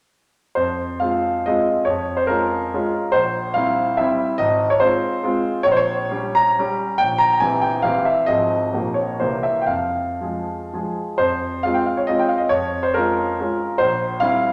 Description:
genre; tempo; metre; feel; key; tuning
classical, romantic triple-time dance for piano with dotted rhythms; 111-155 BPM; 3/4; rubato; F minor; A4 = 440 Hz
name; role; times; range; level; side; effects
clear concert grand piano; solo; 0.6-14.5 s; Ab1 to Bb5; -20 LUFS; equal; none
room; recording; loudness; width
wet stone room reverb, RT60 1.3 s; none; -20 LUFS; mono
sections
0.6-11.2 A section; 11.2-14.5 A section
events
none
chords
0.6 Fm; 1.9 Bbm7/F; 3.1 C7/Bb; 4.4 Fm/Ab; 5.6 Gdim/Bb; 7.0 C7/Bb; 8.3 Fm/Ab; 8.7 Gm7b5/Bb; 9.2 C7; 9.7 Fm; 12.5 Bbm7/F; 13.8 C7/Bb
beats
| 0.58 1.02 1.47 | 1.87 2.29 2.73 | 3.13 3.56 3.99 | 4.39 4.81 5.24 | 5.65 6.11 6.59 | 6.99 7.42 7.85 | 8.28 8.73 9.20 | 9.69 10.22 10.73 | 11.20 11.65 12.10 | 12.51 12.94 13.38 | 13.79 14.21

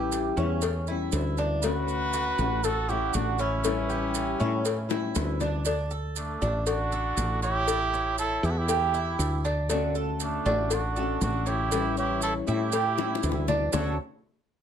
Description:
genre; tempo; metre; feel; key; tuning
latin, Cuban son and guajira; 119 BPM; 4/4; straight; D major; A4 = 440 Hz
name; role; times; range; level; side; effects
trumpet with cup mute; melody; 0.0-14.0 s; D4 to B4; -31 LUFS; right 5 dB; none
clear trumpet; second line; 0.0-14.0 s; A3 to F#4; -36 LUFS; left 6 dB; none
flamenco guitar; accompaniment; 0.0-5.7, 9.7-13.9 s; D3 to F#4; -32 LUFS; left 6 dB; none
Cuban tres; arpeggios; 0.0-14.0 s; C#4 to C#5; -32 LUFS; right 3 dB; none
woody fretless electric bass; bass; 0.0-14.0 s; A1 to A2; -30 LUFS; equal; none
cowbell and bongos; percussion; 0.1-13.9 s; none; -34 LUFS; left 7 dB; none
maracas; percussion; 0.1-13.8 s; none; -37 LUFS; right 10 dB; none
room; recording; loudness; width
light reverb; close, detailed microphones, lossy compression artefacts; -25 LUFS; side -8 dB against mid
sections
0.0-5.7 A section; 5.7-13.7 B section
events
drum fill 4.9-5.7, 13.0-13.7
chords
0.0 A7; 1.6 Dmaj7; 3.6 A7; 5.7 Dmaj7; 7.7 A7; 9.7 Dmaj7; 11.7 A7; 13.7 Dmaj7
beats
0.12 0.62 1.13 | 1.63 2.13 2.64 3.14 | 3.65 4.15 4.66 5.16 | 5.67 6.17 6.67 7.18 | 7.68 8.19 8.69 9.20 | 9.70 10.21 10.71 11.21 | 11.72 12.22 12.73 13.23 | 13.73

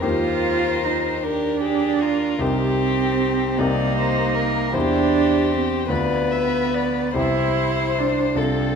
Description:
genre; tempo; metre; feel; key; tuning
classical, slow romantic movement for piano quartet; 50 BPM (dotted quarters); 6/8; uneven beats, rubato; C major from 4.7 s; A4 = 440 Hz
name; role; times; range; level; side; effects
rich violin; melody; 0.0-8.8 s; Eb4 to C5; -25 LUFS; left 8 dB; none
warm cello; second line; 0.0-8.8 s; Bb3 to F4; -22 LUFS; right 7 dB; none
warm violin; second line; 0.0-8.8 s; G4 to E5; -30 LUFS; left 4 dB; none
clear grand piano; accompaniment; 0.0-8.8 s; C2 to C5; -24 LUFS; left 2 dB; none
room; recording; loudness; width
wet recital hall reverb, RT60 1.9 s; none; -18 LUFS; side -6 dB against mid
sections
0.0-8.8 A section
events
none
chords
0.0 Eb; 2.4 Cm7; 4.7 C/E; 5.9 Bdim/D; 7.2 C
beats
| 0.03 1.23 | 2.41 3.60 | 4.74 5.90 | 7.17 8.37

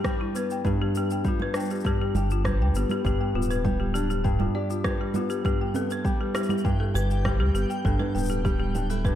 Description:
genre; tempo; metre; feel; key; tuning
folktronica; 100 BPM; 4/4; straight; G major; A4 = 440 Hz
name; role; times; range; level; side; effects
folk marimba with hard mallets; second line; 0.0-9.2 s; E4 to G5; -30 LUFS; left 5 dB; analog delay
nylon-string guitar; arpeggios; 0.0-9.2 s; G2 to G4; -28 LUFS; right 1 dB; analog delay
electronic kick drum; drums; 0.0-9.2 s; none; -27 LUFS; equal; overdrive, studio reverb
electronic rim click, shaker and congas; drums; 0.0-9.2 s; none; -33 LUFS; right 3 dB; overdrive, studio reverb
warm sub bass; bass; 2.1-9.2 s; D1 to D2; -26 LUFS; equal; none
backwards swelling texture; texture; 5.5-9.2 s; G4 to G5; -41 LUFS; right 1 dB; built-in reverb
room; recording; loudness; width
light reverb, digital ambience; none; -23 LUFS; side -11 dB against mid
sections
0.0-9.2 A section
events
none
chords
0.0 Em/G; 0.6 G; 5.4 Em7/G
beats
0.04 | 0.64 1.24 1.84 2.44 | 3.04 3.64 4.24 4.84 | 5.44 6.04 6.64 7.24 | 7.84 8.44 9.04

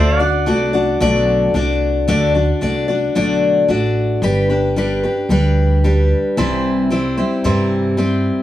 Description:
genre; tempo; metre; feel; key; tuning
country; 112 BPM; 4/4; straight; D mixolydian; A4 = 440 Hz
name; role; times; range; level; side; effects
picked steel-string acoustic guitar; accompaniment; 0.0-8.4 s; C3 to D5; -16 LUFS; left 2 dB; none
pedal steel guitar; sustained chords; 0.0-2.1 s; D5 to F#5; -23 LUFS; right 4 dB; none
upright bass; bass; 0.0-8.3 s; G1 to G2; -18 LUFS; right 1 dB; none
room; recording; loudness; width
light reverb; small room ambience; -14 LUFS; side -13 dB against mid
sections
0.0-2.1 A section; 2.1-8.4 B section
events
none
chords
0.0 D; 4.2 G; 6.4 C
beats
0.47 1.01 1.55 | 2.08 2.62 3.16 3.69 | 4.23 4.76 5.30 5.84 | 6.37 6.91 7.44 7.98

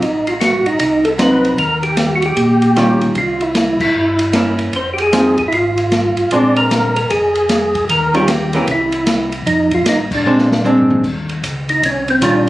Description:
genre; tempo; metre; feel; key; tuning
soul jazz organ trio; 152 BPM; 4/4; swing 64% on 8ths; unclear; A4 = 440 Hz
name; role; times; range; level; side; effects
percussive tonewheel organ; melody; 0.0-12.5 s; C4 to D5; -15 LUFS; equal; slow rotary speaker, chorus vibrato
archtop guitar, miked and amplified; accompaniment; 0.0-12.5 s; Eb3 to Ab4; -15 LUFS; equal; none
mellow tonewheel organ; bass; 0.0-12.5 s; F1 to Bb2; -21 LUFS; equal; slow rotary speaker
open jazz drum kit; drums; 0.0-12.3 s; crash cymbal, hi-hat, kick drum, ride cymbal, snare drum, toms; -20 LUFS; equal; none
room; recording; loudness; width
moderate large studio reverb, RT60 1.2 s; recorded on a phone in the room, club reverb; -12 LUFS; side -16 dB against mid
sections
0.0-11.0 A section; 11.0-12.5 B section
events
band accent 3.8, 10.1; drum fill 10.2-11.0; tonewheel organ solo 11.0-12.5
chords
0.0 Adim7; 1.6 Eb9; 3.2 C7b9; 4.7 Fm7; 6.3 Bb9; 7.9 Eb9; 8.7 C; 9.5 F7; 10.2 Bb9; 11.0 Eb9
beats
| 0.01 0.41 0.80 1.19 | 1.59 1.98 2.37 2.77 | 3.16 3.55 3.95 4.34 | 4.73 5.13 5.52 5.92 | 6.31 6.70 7.10 7.49 | 7.88 8.28 8.67 9.06 | 9.46 9.85 10.25 10.64 | 11.04 11.43 11.82 12.22

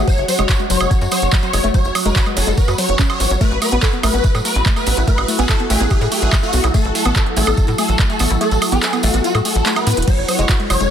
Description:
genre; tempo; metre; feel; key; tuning
psychedelic trance; 144 BPM; 4/4; straight; unclear; A4 = 439 Hz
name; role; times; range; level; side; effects
overtone-sweeping drone; sustained chords; 0.0-10.9 s; F#3 to F#4; -26 LUFS; equal; chorus, built-in reverb, sidechain pumping
tight sequencer bass; bass; 0.0-10.9 s; E1 to A2; -18 LUFS; equal; none
ethereal airy pad; texture; 0.0-10.9 s; E4 to F#5; -27 LUFS; left 2 dB; ensemble chorus, built-in reverb, phaser, sidechain pumping
swarming rave lead; melody; 0.1-10.9 s; F#4 to C#5; -21 LUFS; left 1 dB; chorus, phaser, sidechain pumping, ping-pong delay
woody wave-folded pluck; riff; 0.1-10.9 s; E3 to A4; -23 LUFS; moving between left 5 dB and right 3 dB; chorus, auto-pan, sidechain pumping, ping-pong delay
big-room dance drum kit; drums; 0.1-10.9 s; crash cymbal, handclaps, hi-hat, ride cymbal, woodblock; -21 LUFS; right 2 dB; overdrive
electronic kick drum; drums; 0.1-10.6 s; none; -16 LUFS; equal; none
tambourine; percussion; 0.1-10.9 s; none; -28 LUFS; right 4 dB; none
room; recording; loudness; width
light reverb; dense, heavily limited modern master; -14 LUFS; side -9 dB against mid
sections
0.0-10.9 A section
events
kick drops out 8.4-10.1; drum fill 9.9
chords
0.0 F#5; 3.4 A5; 10.1 F#5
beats
| 0.08 0.49 0.91 1.33 | 1.74 2.16 2.58 2.99 | 3.41 3.83 4.24 4.66 | 5.08 5.49 5.91 6.33 | 6.74 7.16 7.58 7.99 | 8.41 8.83 9.24 9.66 | 10.08 10.49

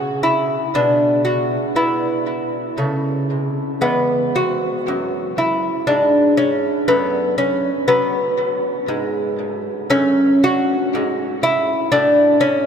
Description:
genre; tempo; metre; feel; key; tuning
classical, baroque-style dance for lute; 59 BPM; 3/4; uneven beats, rubato; unclear; A4 = 441 Hz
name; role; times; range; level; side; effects
lute; solo; 0.0-12.7 s; E2 to F#4; -16 LUFS; equal; tape echo
room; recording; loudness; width
wet cathedral reverb, RT60 6.7 s; dreamy mix soaked in reverb; -16 LUFS; side -7 dB against mid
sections
0.0-12.7 A section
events
none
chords
0.0 A (rootless); 0.7 E/B; 2.8 A/C#; 3.8 E; 6.9 B5/F#; 8.9 N.C.; 9.9 F#m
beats
| 0.75 1.76 2.77 | 3.82 4.89 5.89 | 6.90 7.91 8.89 | 9.91 10.96 11.93

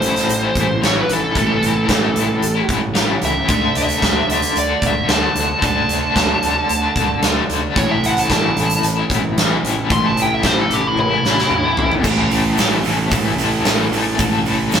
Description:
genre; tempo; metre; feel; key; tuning
classic rock; 112 BPM; 4/4; straight; A major; A4 = 440 Hz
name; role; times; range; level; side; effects
nasal lead guitar with a parked wah; melody; 0.0-12.0 s; E4 to C6; -19 LUFS; equal; overdrive
cranked stack guitar; riff; 0.0-14.8 s; A2 to A4; -21 LUFS; left 5 dB; overdrive, tremolo
overdriven semi-hollow guitar; riff; 0.0-14.8 s; A2 to D4; -22 LUFS; right 4 dB; none
fuzz fingered electric bass; bass; 0.0-14.8 s; A1 to D2; -25 LUFS; equal; overdrive
huge arena drum kit; drums; 0.0-14.8 s; crash cymbal, hi-hat, kick drum, snare drum, toms; -19 LUFS; equal; none
egg shaker; percussion; 12.0-14.8 s; none; -35 LUFS; right 7 dB; none
room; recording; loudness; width
wet studio reverb, RT60 0.6 s; band playing live in one room; -14 LUFS; side -8 dB against mid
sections
0.0-12.0 A section; 12.0-14.8 B section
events
lead electric guitar solo 0.0-12.0; drum fill 11.0-12.0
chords
0.0 A; 3.5 D; 7.8 A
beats
0.29 0.82 | 1.35 1.89 2.42 2.95 | 3.49 4.02 4.55 5.09 | 5.62 6.16 6.69 7.22 | 7.76 8.29 8.83 9.37 | 9.90 10.44 10.97 11.51 | 12.04 12.58 13.12 13.65 | 14.19 14.73

